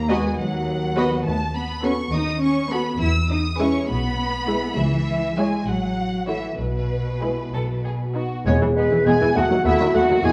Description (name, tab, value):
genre	quick classical-period movement for symphony orchestra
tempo	68 BPM (dotted quarters)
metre	6/8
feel	rubato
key	E major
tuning	A4 = 438 Hz
part	rich studio violin section	melody	0.0-10.3 s	B4 to E6	-31 LUFS	equal	none
part	rich studio cello section	bass	0.0-10.3 s	D#2 to E4	-28 LUFS	equal	none
part	rich studio double bass section	bass	0.0-10.3 s	E1 to E2	-29 LUFS	equal	none
part	rich studio violin section	second line	0.1-10.3 s	B3 to D#5	-32 LUFS	equal	none
part	warm studio viola section	accompaniment	0.1-10.3 s	D#3 to F#4	-28 LUFS	equal	none
part	clear oboe	second line	8.5-10.3 s	B4 to G#5	-31 LUFS	equal	none
part	concert flute	second line	8.5-10.3 s	B4 to G#5	-30 LUFS	equal	none
part	mellow clarinet	second line	8.5-10.3 s	B3	-32 LUFS	equal	none
part	warm bassoon	accompaniment	8.5-10.3 s	G#3 to A3	-30 LUFS	equal	none
part	dark French horn section	sustained chords	8.5-10.3 s	E4 to G#4	-23 LUFS	equal	none
part	timpani	percussion	8.5-9.3 s	E2	-28 LUFS	equal	none
room	wet recital hall reverb, RT60 1.7 s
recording	worn, warbling old tape, cassette tape, warbly pitch drift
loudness	-22 LUFS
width	mono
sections	0.0-8.5 A section; 8.5-10.3 B section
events	none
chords	0.0 B/D#; 1.3 B7/D#; 3.0 E; 4.8 C#m; 5.7 F#m7/A; 6.6 E/B; 7.5 B; 8.5 E; 9.4 B7/D#